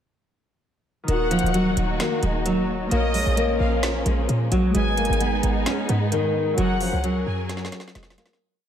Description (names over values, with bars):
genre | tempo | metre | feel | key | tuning
hip hop, trap | 131 BPM | 4/4 | half-time | Eb minor | A4 = 440 Hz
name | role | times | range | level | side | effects
Celtic harp | accompaniment | 1.0-8.7 s | Eb3 to F5 | -30 LUFS | right 1 dB | low-pass filter
nylon-string guitar | melody | 1.1-8.4 s | Eb3 to Db4 | -24 LUFS | equal | analog chorus, low-pass filter, diffuse ambient delay
warm studio violin section | second line | 1.1-7.5 s | Eb5 to Ab5 | -30 LUFS | left 2 dB | diffuse ambient delay
dark symphonic string section | sustained chords | 1.1-8.4 s | Eb3 to Bb4 | -30 LUFS | left 1 dB | none
short 808-style bass | bass | 1.1-8.2 s | Eb1 to Bb2 | -24 LUFS | equal | none
trap drum kit | drums | 1.1-8.4 s | hi-hat, snare drum | -30 LUFS | right 1 dB | none
room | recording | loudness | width
moderate plate reverb, RT60 1.5 s, small room ambience | dreamy mix soaked in reverb | -20 LUFS | side -9 dB against mid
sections
1.1-8.4 hook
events
fade-out 6.6-8.4; drum fill 7.5-8.4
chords
1.1 Ebm; 2.9 Bbm; 4.7 Abm; 6.6 Gbadd9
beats
| 1.08 1.54 2.00 2.46 | 2.91 3.37 3.83 4.29 | 4.75 5.20 5.66 6.12 | 6.58 7.04 7.49 7.95